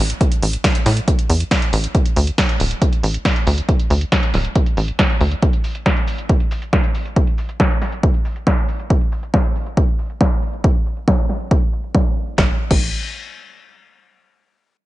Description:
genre	uplifting trance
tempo	138 BPM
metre	4/4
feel	straight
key	unclear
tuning	A4 = 442 Hz
part	tight sequencer bass	bass	0.0-5.3, 12.4-12.9 s	D1 to A2	-17 LUFS	equal	sidechain pumping
part	punchy analog drum machine	drums	0.1-12.8 s	crash cymbal, hi-hat, shaker, snare drum	-22 LUFS	equal	sidechain pumping on hats, low-pass filter on hats, sidechain pumping on cymbals, low-pass filter on cymbals, sidechain pumping on perc, low-pass filter on perc, low-pass filter on snare, low-pass filter on room
part	electronic kick drum	drums	0.2-12.8 s	none	-17 LUFS	equal	none
room	little or no reverb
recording	nothing above 10.9 kHz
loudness	-15 LUFS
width	side -17 dB against mid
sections	0.0-12.4 A section; 12.4-14.1 B section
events	filter sweep on drum 0.0-12.4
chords	none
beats	| 0.21 0.64 1.08 1.51 | 1.95 2.38 2.82 3.25 | 3.69 4.12 4.55 4.99 | 5.42 5.86 6.29 6.73 | 7.16 7.60 8.03 8.47 | 8.90 9.34 9.77 10.21 | 10.64 11.08 11.51 11.95 | 12.38 12.82

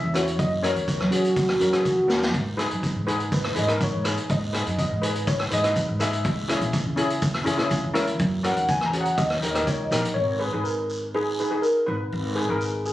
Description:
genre	calypso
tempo	123 BPM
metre	4/4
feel	straight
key	G# minor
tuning	A4 = 442 Hz
part	tine electric piano	melody	0.0-12.9 s	F#4 to A#5	-26 LUFS	equal	lush chorus
part	upright bass	bass	0.0-12.9 s	G#1 to F#3	-28 LUFS	equal	none
part	steel pan	accompaniment	0.1-12.9 s	C#4 to B4	-28 LUFS	left 2 dB	none
part	guiro	percussion	0.1-12.9 s	none	-39 LUFS	right 1 dB	none
part	street-band drum kit	drums	0.2-10.2 s	hi-hat, kick drum, rim click, snare drum	-26 LUFS	equal	none
room	light reverb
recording	recorded on a phone in the room, studio ambience, compression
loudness	-21 LUFS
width	side -14 dB against mid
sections	0.0-10.2 A section; 10.2-12.9 B section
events	tine electric piano solo 0.0-10.2; drum fill 2.1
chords	0.4 F#; 2.3 G#m; 6.3 C#m; 8.2 F#; 9.2 D#; 10.2 G#m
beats	| 0.39 0.88 1.36 1.85 | 2.34 2.83 3.32 3.81 | 4.30 4.79 5.27 5.76 | 6.25 6.74 7.23 7.72 | 8.21 8.70 9.18 9.67 | 10.16 10.65 11.14 11.63 | 12.12 12.61

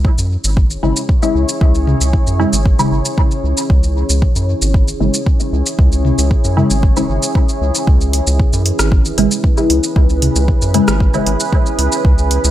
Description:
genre	dub techno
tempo	115 BPM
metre	4/4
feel	straight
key	C# minor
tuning	A4 = 435 Hz
part	deep dark ambient pad	sustained chords	0.4-12.5 s	C#4 to C#5	-21 LUFS	right 1 dB	chorus, built-in reverb, sidechain pumping
part	round analog bass	bass	0.0-12.5 s	G#1 to F#2	-16 LUFS	equal	sidechain pumping
part	electronic kick drum	drums	0.0-12.2 s	none	-13 LUFS	equal	none
part	deep house drum kit	drums	0.2-12.5 s	hi-hat, rim click, shaker	-20 LUFS	equal	none
part	filtered dub chord stab	stabs	0.8-11.4 s	C#3 to E4	-18 LUFS	left 1 dB	phaser, sidechain pumping, dub echo
part	electronic toms	percussion	1.9-2.0, 6.0-6.2, 10.2-10.3 s	none	-20 LUFS	left 2 dB	sidechain pumping on toms, sidechain pumping on perc
room	light reverb, digital ambience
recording	none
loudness	-12 LUFS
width	side -13 dB against mid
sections	0.0-12.5 A section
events	none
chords	0.0 C#m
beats	0.05 0.57 1.09 | 1.61 2.13 2.66 3.18 | 3.70 4.22 4.74 5.26 | 5.79 6.31 6.83 7.35 | 7.87 8.39 8.92 9.44 | 9.96 10.48 11.00 11.53 | 12.05

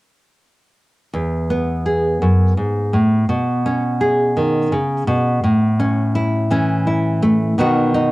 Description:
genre	folk, solo fingerstyle acoustic guitar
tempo	56 BPM (dotted quarters)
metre	6/8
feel	straight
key	E major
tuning	A4 = 439 Hz
part	nylon-string guitar	solo	1.1-8.1 s	E2 to G#4	-15 LUFS	equal	none
room	moderate studio reverb, RT60 0.6 s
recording	home recording on cassette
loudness	-15 LUFS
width	side -19 dB against mid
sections	1.1-8.1 A section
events	none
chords	1.1 E; 3.3 Badd9; 5.4 A; 7.6 B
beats	| 1.14 2.21 | 3.28 4.36 | 5.43 6.50 | 7.58

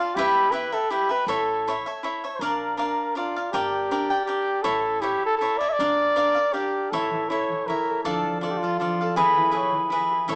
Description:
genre	mexican folk, mariachi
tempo	160 BPM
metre	3/4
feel	swing 53% on 8ths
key	unclear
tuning	A4 = 439 Hz
part	dark trumpet	melody	0.0-10.4 s	F4 to E5	-24 LUFS	equal	none
part	cavaquinho	accompaniment	0.0-10.4 s	D4 to G5	-24 LUFS	equal	none
part	upright bass	bass	0.2-10.4 s	G1 to E2	-43 LUFS	equal	none
part	concert harp	arpeggios	6.9-10.4 s	E3 to A4	-29 LUFS	equal	none
room	moderate large studio reverb, RT60 0.8 s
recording	band playing live in one room, small speaker sound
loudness	-21 LUFS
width	side -37 dB against mid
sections	0.0-10.4 A section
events	none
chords	0.1 Em; 1.3 A; 2.4 Bb; 3.5 Gm; 4.7 A; 5.8 Bb; 6.9 A; 8.1 Dm; 9.2 E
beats	| 0.15 0.52 0.89 | 1.27 1.65 2.02 | 2.41 2.79 3.16 | 3.54 3.92 4.29 | 4.66 5.04 5.41 | 5.79 6.17 6.55 | 6.93 7.30 7.68 | 8.06 8.43 8.80 | 9.17 9.54 9.91 | 10.29

